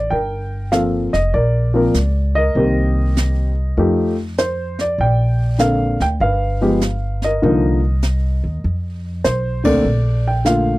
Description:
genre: jazz piano trio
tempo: 99 BPM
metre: 4/4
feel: swing 66% on 8ths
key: unclear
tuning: A4 = 440 Hz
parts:
  - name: dark baby grand piano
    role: melody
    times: 0.0-10.8 s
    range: D3 to G5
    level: -18 LUFS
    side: equal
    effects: none
  - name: upright bass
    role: bass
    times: 0.0-10.8 s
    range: F1 to F2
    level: -18 LUFS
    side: equal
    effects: none
  - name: jazz brush drum kit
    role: drums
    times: 0.1-10.8 s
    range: brushed snare drum, hi-hat, kick drum, ride cymbal, snare drum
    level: -26 LUFS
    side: right 1 dB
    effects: none
room: little or no reverb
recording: dry, close 1970s-style studio recording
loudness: -15 LUFS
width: side -18 dB against mid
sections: 0.0-10.8 A section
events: band accent 9.6-9.9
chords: 0.1 Gm11; 2.6 Cm7; 3.8 F9; 5.0 Bbmaj9; 6.2 G7; 7.4 Cm11; 8.6 F7; 9.9 Bbmaj7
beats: | 0.12 0.73 1.33 1.94 | 2.55 3.16 3.77 4.38 | 4.99 5.60 6.21 6.81 | 7.42 8.03 8.64 9.25 | 9.86 10.46

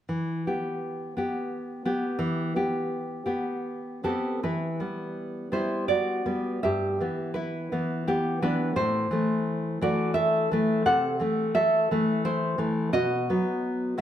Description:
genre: romantic piece for solo classical guitar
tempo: 73-88 BPM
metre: 3/4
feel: rubato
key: E minor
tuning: A4 = 439 Hz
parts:
  - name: nylon-string guitar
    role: solo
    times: 0.1-14.0 s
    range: G2 to F#5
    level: -25 LUFS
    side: equal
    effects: none
room: moderate recital hall reverb, RT60 1.8 s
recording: none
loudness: -25 LUFS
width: side -10 dB against mid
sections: 0.1-4.4 A section; 4.4-14.0 B section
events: none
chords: 0.1 Em; 6.6 Em/G; 8.8 Am; 10.9 Am/C; 12.9 B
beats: | 0.09 0.82 1.51 | 2.20 2.90 3.65 | 4.44 5.17 5.90 | 6.62 7.35 8.06 | 8.75 9.46 10.16 | 10.87 11.56 12.24 | 12.94 13.64

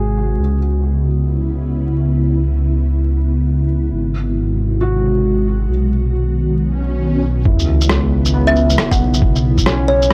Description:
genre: future garage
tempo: 136 BPM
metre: 4/4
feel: swing 62% on 16ths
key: C# minor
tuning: A4 = 439 Hz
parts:
  - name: felt-muted upright piano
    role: accompaniment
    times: 0.0-0.6, 4.8-10.1 s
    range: B3 to G#4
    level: -26 LUFS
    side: equal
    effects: sidechain pumping, tape echo
  - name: ethereal airy pad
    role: sustained chords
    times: 0.0-10.1 s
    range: B#2 to F#4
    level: -22 LUFS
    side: equal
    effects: ensemble chorus, built-in reverb, sidechain pumping
  - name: dark detuned saw bass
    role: bass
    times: 0.0-10.1 s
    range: G#1 to C#2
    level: -19 LUFS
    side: equal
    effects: tube saturation, sidechain pumping
  - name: swell and sub drop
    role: sound effects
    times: 6.7-9.2 s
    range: none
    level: -25 LUFS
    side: equal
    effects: none
  - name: electronic kick drum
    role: drums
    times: 7.5-9.6 s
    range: none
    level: -17 LUFS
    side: equal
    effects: none
  - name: electronic shaker, rim click and claves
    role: drums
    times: 7.6-10.1 s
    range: none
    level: -21 LUFS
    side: equal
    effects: none
  - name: kalimba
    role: melody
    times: 8.5-10.1 s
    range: C#5 to F#5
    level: -20 LUFS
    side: equal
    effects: vintage 12-bit sampler grit, analog delay
room: little or no reverb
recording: dry, gritty hardware recording, vinyl crackle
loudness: -16 LUFS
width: mono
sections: 0.0-7.5 A section; 7.5-10.1 B section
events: swell 6.7-7.5; impact 7.5-9.2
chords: 0.4 C#m7; 3.9 G#7; 5.7 B; 7.5 C#m7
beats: | 0.40 0.84 1.28 1.72 | 2.16 2.60 3.04 3.48 | 3.92 4.37 4.81 5.25 | 5.69 6.13 6.57 7.01 | 7.45 7.89 8.34 8.78 | 9.22 9.66 10.10

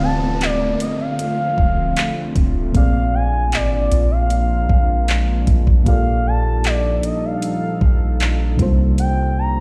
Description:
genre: contemporary R&B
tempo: 77 BPM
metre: 4/4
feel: straight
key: D phrygian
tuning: A4 = 440 Hz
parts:
  - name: gliding portamento lead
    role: melody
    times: 0.0-9.6 s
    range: D5 to Bb5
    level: -26 LUFS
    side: equal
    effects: chorus, delay
  - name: mellow FM electric piano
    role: accompaniment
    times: 0.0-9.6 s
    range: Bb2 to D5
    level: -26 LUFS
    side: equal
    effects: chorus
  - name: deep dark ambient pad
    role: sustained chords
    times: 0.0-9.6 s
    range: C3 to A4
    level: -29 LUFS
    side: equal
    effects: chorus, built-in reverb
  - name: soft 808-style bass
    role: bass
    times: 0.0-9.6 s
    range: D1 to C2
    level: -21 LUFS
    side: equal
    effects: none
  - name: downlifter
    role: sound effects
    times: 0.0-5.9 s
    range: none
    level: -32 LUFS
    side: equal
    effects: none
  - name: smooth R&B drum kit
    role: drums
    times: 0.4-9.2 s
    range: handclaps, hi-hat, kick drum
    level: -20 LUFS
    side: equal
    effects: none
room: little or no reverb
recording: played on a big sound system in a bare room, large studio reverb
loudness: -18 LUFS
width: mono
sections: 0.0-9.6 A section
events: none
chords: 0.0 Dm7; 2.7 Bb7; 5.9 Ebmaj9#11/Bb; 8.6 C7sus4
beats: 0.41 1.19 1.97 | 2.75 3.53 4.30 5.08 | 5.86 6.64 7.42 8.20 | 8.98

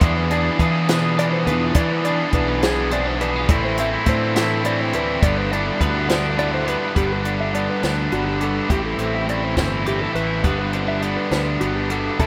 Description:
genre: math rock and midwest emo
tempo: 69 BPM (dotted quarters)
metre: 6/8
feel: straight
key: G major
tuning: A4 = 440 Hz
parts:
  - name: twelve-string electric guitar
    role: accompaniment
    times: 0.0-12.3 s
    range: G2 to B4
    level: -29 LUFS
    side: equal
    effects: spring reverb
  - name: mellow electric guitar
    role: arpeggios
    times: 0.0-12.3 s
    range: F#4 to E5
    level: -29 LUFS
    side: equal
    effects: tape echo
  - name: overdriven electric guitar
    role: riff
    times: 0.0-12.3 s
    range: G2 to G#4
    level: -24 LUFS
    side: equal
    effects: spring reverb
  - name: fuzz fingered electric bass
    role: bass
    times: 0.0-12.3 s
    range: G1 to E3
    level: -27 LUFS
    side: equal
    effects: overdrive
  - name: compact cocktail drum kit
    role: drums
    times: 0.0-12.3 s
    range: hi-hat, kick drum, snare drum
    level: -23 LUFS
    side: equal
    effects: none
room: light reverb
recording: rough home demo mix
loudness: -20 LUFS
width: mono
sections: 0.0-7.0 A section; 7.0-12.3 B section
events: none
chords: 0.0 E7b9; 3.5 Amadd9; 5.2 G6; 7.0 Gmaj7; 8.7 Am7; 10.5 Gmaj7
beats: | 0.02 0.88 | 1.75 2.62 | 3.48 4.35 | 5.22 6.09 | 6.96 7.83 | 8.71 9.58 | 10.45 11.32 | 12.20

